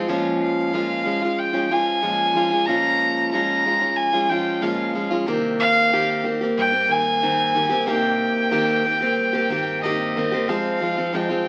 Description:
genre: acoustic folk duo or small band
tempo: 92 BPM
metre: 4/4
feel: straight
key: unclear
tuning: A4 = 437 Hz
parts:
  - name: picked plugged-in steel-string acoustic guitar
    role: accompaniment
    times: 0.0-11.5 s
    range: F2 to G4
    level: -24 LUFS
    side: equal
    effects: none
  - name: upright bass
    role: bass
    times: 0.0-11.5 s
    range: Bb1 to G2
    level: -42 LUFS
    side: equal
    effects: none
  - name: rich fiddle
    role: melody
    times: 0.4-11.5 s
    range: Eb5 to Bb5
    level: -23 LUFS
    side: equal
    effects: none
room: wet studio reverb, RT60 0.6 s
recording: very old 78 rpm record, vinyl crackle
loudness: -21 LUFS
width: mono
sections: 0.1-10.5 A section; 10.5-11.5 B section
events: none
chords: 0.1 Bbm7; 5.3 Cm7; 10.5 Fm

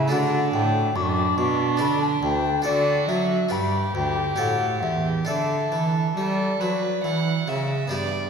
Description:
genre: classical, baroque-style sonata movement with continuo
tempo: 69 BPM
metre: 3/4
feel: rubato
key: D major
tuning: A4 = 436 Hz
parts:
  - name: mellow baroque flute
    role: melody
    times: 0.0-7.4 s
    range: D5 to D6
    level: -26 LUFS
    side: left 4 dB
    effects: none
  - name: rich violin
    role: second line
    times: 0.0-8.3 s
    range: D4 to F#5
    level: -28 LUFS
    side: right 6 dB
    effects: none
  - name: harpsichord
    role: accompaniment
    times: 0.0-8.3 s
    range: D2 to B4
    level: -29 LUFS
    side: equal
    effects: none
  - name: rich cello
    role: bass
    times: 0.0-8.3 s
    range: D2 to G3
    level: -25 LUFS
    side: right 2 dB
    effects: none
room: wet concert hall reverb, RT60 2.0 s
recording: none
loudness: -20 LUFS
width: side -6 dB against mid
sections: 0.0-7.9 A section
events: none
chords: 0.1 D; 1.8 G/D; 2.7 D; 3.5 G; 4.4 A7; 5.3 D

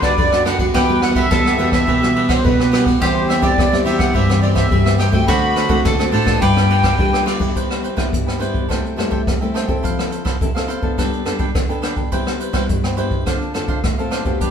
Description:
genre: samba and choro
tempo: 105 BPM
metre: 4/4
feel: straight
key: G major, C major from 7.6 s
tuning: A4 = 440 Hz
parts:
  - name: accordion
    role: melody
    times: 0.0-7.2 s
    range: B4 to B5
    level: -20 LUFS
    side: equal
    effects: light tremolo tuning
  - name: mandolin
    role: second line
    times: 0.0-7.2 s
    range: F#4 to B4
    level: -24 LUFS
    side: left 2 dB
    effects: none
  - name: cavaquinho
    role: accompaniment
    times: 0.0-14.5 s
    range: D4 to G5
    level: -25 LUFS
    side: right 4 dB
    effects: none
  - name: nylon-string guitar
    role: accompaniment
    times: 0.0-14.5 s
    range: G2 to B4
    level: -22 LUFS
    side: left 2 dB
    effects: none
  - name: nylon-string guitar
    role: bass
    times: 0.0-7.5 s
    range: E2 to G3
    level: -18 LUFS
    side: equal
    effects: none
  - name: jazz brush drum kit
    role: drums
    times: 0.0-14.5 s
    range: hi-hat, kick drum, ride cymbal, rim click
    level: -19 LUFS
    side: equal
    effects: none
room: wet studio reverb, RT60 1.0 s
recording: band playing live in one room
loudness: -15 LUFS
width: side -8 dB against mid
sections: 0.0-7.6 A section; 7.6-14.5 B section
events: none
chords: 0.0 Gmaj7; 0.7 Emadd9; 3.0 C/E; 5.3 D7; 6.4 G7; 7.6 Cmaj7; 8.7 Am7/C; 9.8 Fmaj7; 11.0 Gadd9; 12.1 Cmaj7; 13.3 Dm7

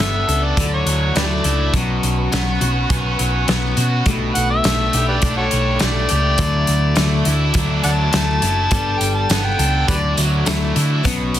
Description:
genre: folk rock and heartland rock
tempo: 103 BPM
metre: 4/4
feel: straight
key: unclear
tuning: A4 = 439 Hz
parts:
  - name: overdriven harmonica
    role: melody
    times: 0.0-10.2 s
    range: F#4 to A5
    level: -22 LUFS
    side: left 1 dB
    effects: plate reverb, tape echo
  - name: picked steel-string acoustic guitar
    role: accompaniment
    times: 0.0-11.4 s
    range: B2 to A4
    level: -24 LUFS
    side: left 4 dB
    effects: none
  - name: dark studio string section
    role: sustained chords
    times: 0.0-11.4 s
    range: F#4 to D6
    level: -32 LUFS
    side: left 1 dB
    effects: none
  - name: biting overdriven guitar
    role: riff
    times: 0.0-11.4 s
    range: B2 to A4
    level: -23 LUFS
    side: right 2 dB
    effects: none
  - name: hollow-body short-scale picked electric bass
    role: bass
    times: 0.0-11.4 s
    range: F#1 to D3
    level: -20 LUFS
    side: equal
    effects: none
  - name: loose indie drum kit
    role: drums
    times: 0.0-11.4 s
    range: hi-hat, kick drum, snare drum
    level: -21 LUFS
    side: equal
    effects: none
  - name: tambourine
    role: percussion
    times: 9.0-11.4 s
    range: none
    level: -30 LUFS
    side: right 7 dB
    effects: none
room: light reverb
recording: dense, heavily limited modern master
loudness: -15 LUFS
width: side -11 dB against mid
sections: 0.0-11.4 A section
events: harmonica solo 0.0-11.4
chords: 0.0 Gadd9; 0.6 Dadd9; 1.7 Bsus2; 4.1 Gadd9/B; 6.4 Dadd9; 8.7 Gadd9; 9.9 Dadd9

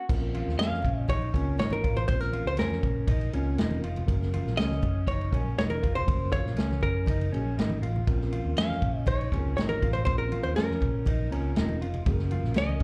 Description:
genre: uptempo 1960s-style soul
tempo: 120 BPM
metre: 4/4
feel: straight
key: Bb minor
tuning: A4 = 440 Hz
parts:
  - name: electric guitar through a small old amp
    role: riff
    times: 0.0-12.8 s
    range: Db4 to F4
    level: -40 LUFS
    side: equal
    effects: slapback echo
  - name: mellow tine electric piano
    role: accompaniment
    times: 0.1-12.8 s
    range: Gb3 to Bb5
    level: -38 LUFS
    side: equal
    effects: slapback echo
  - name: vintage muted picked electric bass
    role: bass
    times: 0.1-12.8 s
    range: E1 to Bb2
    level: -32 LUFS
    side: equal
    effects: none
  - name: vintage drum kit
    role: drums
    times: 0.1-12.8 s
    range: crash cymbal, kick drum, ride cymbal, snare drum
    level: -32 LUFS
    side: equal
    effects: none
  - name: congas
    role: percussion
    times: 0.1-12.8 s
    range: none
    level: -40 LUFS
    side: equal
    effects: none
  - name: hollow-body jazz guitar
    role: melody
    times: 0.6-12.8 s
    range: Bb4 to F5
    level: -34 LUFS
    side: equal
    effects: slapback echo
room: light reverb, studio ambience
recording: live gig heard through the venue's PA, club reverb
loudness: -28 LUFS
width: mono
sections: 0.1-12.8 A section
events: tine electric piano fill 11.1-12.1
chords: 0.1 Bbmadd9; 4.1 Gb; 8.1 Bbmadd9; 12.1 Gb

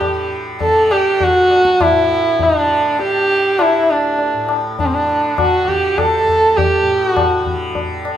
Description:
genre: indian classical, Hindustani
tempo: 101 BPM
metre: 3/4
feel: straight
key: D major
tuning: A4 = 441 Hz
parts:
  - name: dark sarangi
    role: melody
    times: 0.0-7.5 s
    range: C4 to A4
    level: -14 LUFS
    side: right 1 dB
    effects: none
  - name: tanpura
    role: drone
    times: 0.0-8.2 s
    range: D2 to D3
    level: -25 LUFS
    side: equal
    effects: none
  - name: tabla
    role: percussion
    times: 0.0-8.2 s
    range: none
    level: -21 LUFS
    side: left 4 dB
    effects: none
room: moderate recital hall reverb, RT60 1.8 s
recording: minimal, uncompressed stereo recording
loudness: -12 LUFS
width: side -10 dB against mid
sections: 0.0-8.2 A section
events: none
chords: none

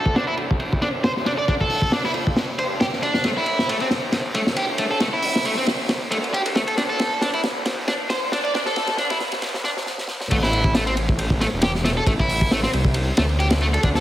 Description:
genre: breakbeat, breaks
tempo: 136 BPM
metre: 4/4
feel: swing 55% on 16ths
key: A minor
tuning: A4 = 438 Hz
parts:
  - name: distorted electric guitar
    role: riff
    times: 0.0-14.0 s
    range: A3 to D5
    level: -23 LUFS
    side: equal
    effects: overdrive, low-pass filter, tape echo
  - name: detuned saw bass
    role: bass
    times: 0.0-14.0 s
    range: D1 to G2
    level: -27 LUFS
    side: equal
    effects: tube saturation, high-pass filter
  - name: crunchy breakbeat drum kit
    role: drums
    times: 0.1-14.0 s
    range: crash cymbal, hi-hat, kick drum, ride cymbal, snare drum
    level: -22 LUFS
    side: equal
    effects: low-pass filter on kick, low-pass filter on cymbals, low-pass filter on hats, low-pass filter on snare, low-pass filter on room
room: moderate plate reverb, RT60 1.6 s, small room ambience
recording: heavily compressed radio sound, high-pass filter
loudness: -19 LUFS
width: side -13 dB against mid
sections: 0.0-10.3 A section; 10.3-14.0 B section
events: build-up 0.0-10.3; filter sweep on drum 0.0-10.3; filter sweep 0.0-10.3; drum fill 3.2-9.9, 9.9-10.3; stop 9.9-10.3; drop 10.3-14.0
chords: 0.0 Dm7; 3.2 Am; 6.8 Dm; 10.3 Am

